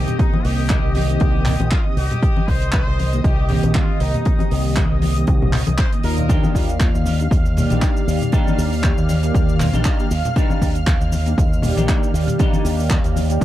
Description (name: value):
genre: nu-disco, nu disco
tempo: 118 BPM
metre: 4/4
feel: swing 55% on 16ths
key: C minor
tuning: A4 = 440 Hz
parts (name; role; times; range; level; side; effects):
- bright trumpet section; melody; 0.0-6.5 s; Eb4 to C5; -30 LUFS; left 3 dB; ping-pong delay
- mellow synth brass; accompaniment; 0.0-13.4 s; Eb3 to D5; -24 LUFS; equal; chorus, vintage 12-bit sampler grit
- lush unison pad; sustained chords; 0.0-13.4 s; Eb5 to F6; -30 LUFS; right 2 dB; chorus, phaser, sidechain pumping
- fingered electric bass with an envelope filter; bass; 0.0-13.4 s; Bb1 to Eb2; -20 LUFS; equal; sidechain pumping
- damped 70s drum kit; drums; 0.1-13.4 s; cabasa, handclaps, hi-hat; -29 LUFS; right 1 dB; none
- congas; percussion; 0.1-13.3 s; none; -24 LUFS; left 2 dB; none
- electronic kick drum; drums; 0.2-13.4 s; none; -18 LUFS; equal; overdrive
- semi-hollow electric guitar; riff; 6.3-13.4 s; D4 to G4; -29 LUFS; left 1 dB; ensemble chorus, ping-pong delay
room: small room ambience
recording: dark, warm production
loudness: -15 LUFS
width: side -14 dB against mid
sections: 0.0-13.4 A section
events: none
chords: 0.0 Cm7; 6.3 Ebmaj7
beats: | 0.19 0.70 1.21 1.72 | 2.23 2.74 3.25 3.75 | 4.26 4.77 5.28 5.79 | 6.30 6.80 7.31 7.82 | 8.33 8.84 9.35 9.86 | 10.36 10.87 11.38 11.89 | 12.40 12.91 13.41